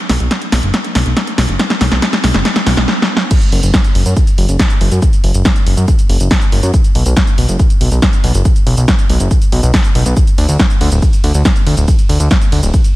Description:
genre	uplifting trance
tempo	140 BPM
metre	4/4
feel	straight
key	unclear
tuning	A4 = 440 Hz
part	fat analog bass	bass	0.1-12.7 s	D1 to F#2	-12 LUFS	equal	sidechain pumping
part	punchy analog drum machine	drums	0.1-12.9 s	crash cymbal, hi-hat, ride cymbal, shaker, snare drum	-16 LUFS	equal	none
part	electronic kick drum	drums	3.3-12.8 s	none	-12 LUFS	equal	none
room	light reverb, digital ambience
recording	none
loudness	-10 LUFS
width	side -17 dB against mid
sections	0.0-3.3 A section; 3.3-13.0 B section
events	build-up 0.0-3.3; drum fill 0.0-2.9, 2.9-3.3; drop 3.3-13.0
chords	none

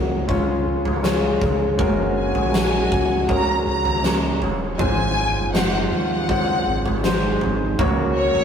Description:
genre	pop ballad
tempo	80 BPM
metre	4/4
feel	straight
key	F# major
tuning	A4 = 441 Hz
part	mellow French horn section	second line	0.0-8.4 s	D#4 to A#4	-26 LUFS	left 2 dB	tape echo
part	warm concert grand piano	accompaniment	0.0-8.4 s	G#2 to C#5	-25 LUFS	left 1 dB	none
part	fingerpicked steel-string acoustic guitar	arpeggios	0.0-8.4 s	G#2 to A#4	-29 LUFS	right 2 dB	none
part	sub bass with octave	bass	0.0-8.4 s	D#1 to D#2	-27 LUFS	right 1 dB	none
part	huge arena drum kit	drums	0.3-8.4 s	kick drum, snare drum, toms	-23 LUFS	equal	none
part	tambourine	percussion	1.0-7.2 s	none	-41 LUFS	left 3 dB	none
part	warm studio violin section	melody	2.2-8.4 s	C#5 to A#5	-24 LUFS	left 1 dB	none
room	wet booth ambience, RT60 0.3 s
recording	rough rehearsal-room recording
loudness	-18 LUFS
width	side -7 dB against mid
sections	0.0-8.4 A section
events	none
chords	0.3 C#; 1.8 F#add9; 4.8 G#7; 7.8 F#/C#

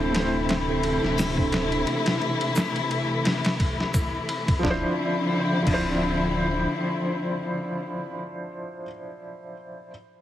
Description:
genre	trip hop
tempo	87 BPM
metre	4/4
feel	swing 56% on 16ths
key	D minor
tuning	A4 = 442 Hz
part	felt-muted upright piano	accompaniment	0.0-9.9 s	F3 to C5	-28 LUFS	equal	tremolo, vintage 12-bit sampler grit, tape echo
part	dark studio string section	sustained chords	0.0-8.2 s	C3 to E4	-27 LUFS	left 3 dB	none
part	music box	arpeggios	0.0-5.9 s	D4 to A4	-32 LUFS	right 4 dB	tape echo
part	round analog bass	bass	0.0-6.7 s	D1	-32 LUFS	equal	none
part	backwards swelling texture	texture	0.0-1.9 s	A4	-47 LUFS	right 1 dB	none
part	trip hop sampler-style drum kit	drums	0.1-5.9 s	crash cymbal, hi-hat, kick drum, ride cymbal, snare drum	-27 LUFS	equal	overdrive
part	egg shaker	percussion	1.2-4.1 s	none	-40 LUFS	right 1 dB	none
room	light reverb, studio ambience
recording	heavily compressed radio sound, multiband compression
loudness	-22 LUFS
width	side -12 dB against mid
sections	0.0-4.6 A section; 4.6-7.4 B section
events	none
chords	0.0 Am/D; 4.6 Dm9

